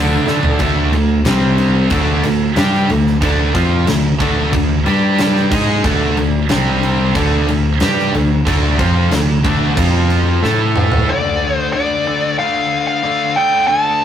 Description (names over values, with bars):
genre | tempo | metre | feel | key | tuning
hard rock | 92 BPM | 4/4 | straight | D minor | A4 = 440 Hz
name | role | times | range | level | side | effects
biting overdriven guitar | riff | 0.0-14.0 s | C3 to A4 | -20 LUFS | left 6 dB | none
distorted electric guitar | riff | 0.0-11.1 s | C3 to A4 | -22 LUFS | right 1 dB | overdrive
high-gain distorted guitar | riff | 0.0-11.1 s | C3 to A4 | -19 LUFS | right 5 dB | distortion
picked electric bass | bass | 0.0-11.0 s | C2 to D3 | -17 LUFS | equal | none
huge arena drum kit | drums | 0.3-11.1 s | crash cymbal, kick drum, snare drum, toms | -19 LUFS | equal | none
nasal lead guitar with a parked wah | melody | 11.1-14.0 s | D5 to A5 | -15 LUFS | equal | overdrive
room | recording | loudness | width
moderate studio reverb, RT60 0.5 s | rough rehearsal-room recording, tube saturation | -12 LUFS | side -9 dB against mid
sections
0.6-11.1 A section; 11.1-14.0 B section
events
drum fill 0.3-0.6, 10.4-11.1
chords
0.0 D5; 1.3 C5; 1.9 Dm; 4.9 G5; 5.5 D5; 6.5 C5; 7.2 Dm; 9.8 F5; 10.4 A5; 11.1 Dm